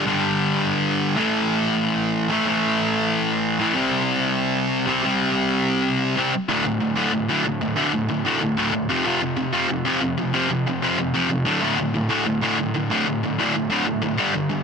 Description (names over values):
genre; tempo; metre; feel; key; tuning
punk; 187 BPM; 4/4; straight; D minor; A4 = 440 Hz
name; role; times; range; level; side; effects
sludgy distorted guitar; solo; 0.0-14.6 s; D2 to C4; -19 LUFS; equal; overdrive, ping-pong delay
room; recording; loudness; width
light reverb; dense, heavily limited modern master; -19 LUFS; side -6 dB against mid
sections
0.0-6.5 A section; 6.5-14.6 B section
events
none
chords
0.0 G5; 1.2 A5; 3.8 C5; 6.5 D5; 8.9 F5; 11.5 D5